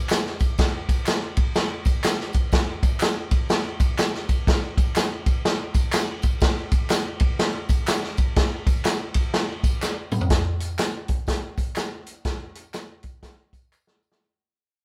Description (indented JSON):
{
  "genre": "soul",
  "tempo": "123 BPM",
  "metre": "4/4",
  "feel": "swing 62% on 8ths",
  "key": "none",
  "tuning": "none",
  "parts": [
    { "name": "vintage drum kit", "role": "drums", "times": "0.1-14.2 s", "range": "hi-hat, kick drum, ride cymbal, snare drum, toms", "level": "-24 LUFS", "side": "equal", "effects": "none" },
    { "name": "handclaps and tambourine", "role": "percussion", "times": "0.1-14.1 s", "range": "none", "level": "-36 LUFS", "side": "equal", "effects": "none" }
  ],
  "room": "light reverb",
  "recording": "band playing live in one room",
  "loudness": "-23 LUFS",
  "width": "mono",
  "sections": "0.0-10.3 A section; 10.3-14.2 B section",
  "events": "drum fill 9.8-10.3, 13.7-14.2; fade-out 10.3-14.2",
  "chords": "none"
}